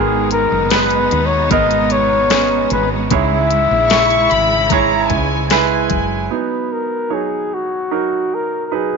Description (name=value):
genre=pop ballad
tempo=75 BPM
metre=4/4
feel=straight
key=B major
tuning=A4 = 440 Hz
part: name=mellow flugelhorn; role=melody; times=0.0-9.0 s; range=F#4 to E5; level=-17 LUFS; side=left 6 dB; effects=slapback echo
part: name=bright concert grand piano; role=accompaniment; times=0.0-9.0 s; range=G#2 to E5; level=-18 LUFS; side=right 15 dB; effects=none
part: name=clear symphonic string section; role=sustained chords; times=0.0-6.3 s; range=B2 to E4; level=-24 LUFS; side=left 2 dB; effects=none
part: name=woody fretless electric bass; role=bass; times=0.0-6.3 s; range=F#1 to D#2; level=-22 LUFS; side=left 1 dB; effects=none
part: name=smooth R&B drum kit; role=drums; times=0.3-6.1 s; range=hi-hat, kick drum, snare drum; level=-19 LUFS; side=left 8 dB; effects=none
part: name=warm studio violin section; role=second line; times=3.9-6.3 s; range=G#5 to C#6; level=-20 LUFS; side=equal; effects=none
room=studio ambience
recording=1960s-style stereo with parts hard left and right, nothing above 7.5 kHz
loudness=-13 LUFS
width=side -5 dB against mid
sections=0.0-6.3 A section; 6.3-9.0 B section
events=none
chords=0.0 G#madd9; 3.1 C#m; 6.3 B